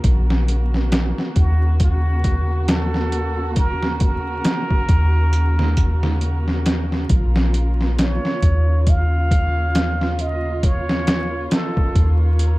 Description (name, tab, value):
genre	trip hop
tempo	68 BPM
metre	4/4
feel	swing 58% on 16ths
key	unclear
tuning	A4 = 444 Hz
part	dark studio string section	sustained chords	0.0-12.6 s	Db3 to Gb4	-29 LUFS	equal	none
part	soft 808-style bass	bass	0.0-12.6 s	Bb1 to Eb2	-18 LUFS	equal	none
part	trip hop sampler-style drum kit	drums	0.0-12.6 s	hi-hat, kick drum, snare drum	-19 LUFS	equal	overdrive
part	trumpet with plunger mute	melody	1.4-12.6 s	Gb4 to F5	-28 LUFS	right 1 dB	tape echo
room	little or no reverb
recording	dark, warm production, vinyl crackle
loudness	-16 LUFS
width	side -20 dB against mid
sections	0.0-12.6 A section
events	none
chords	0.0 Gb/Bb; 7.1 Bbm